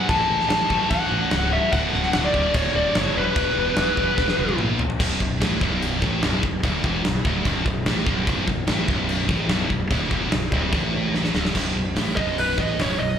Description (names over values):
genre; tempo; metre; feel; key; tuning
hard rock; 147 BPM; 4/4; straight; unclear; A4 = 440 Hz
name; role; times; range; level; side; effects
lead guitar through a small cranked amp; melody; 0.0-4.6, 12.2-13.2 s; B4 to A5; -23 LUFS; left 1 dB; overdrive, slapback echo
high-gain distorted guitar; riff; 0.0-13.2 s; B1 to A3; -24 LUFS; equal; distortion
fingered electric bass; bass; 0.1-13.2 s; B0 to A#1; -27 LUFS; equal; none
huge arena drum kit; drums; 0.1-12.9 s; crash cymbal, hi-hat, kick drum, snare drum, toms; -24 LUFS; equal; none
room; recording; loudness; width
light reverb, small room ambience; live gig heard through the venue's PA, club reverb; -19 LUFS; side -8 dB against mid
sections
0.0-5.0 A section; 5.0-11.5 B section; 11.5-13.2 C section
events
drum fill 4.2-5.0, 11.1-11.5; lead electric guitar solo 11.5-13.2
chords
0.1 A; 1.7 D; 3.2 E5; 5.0 Bm7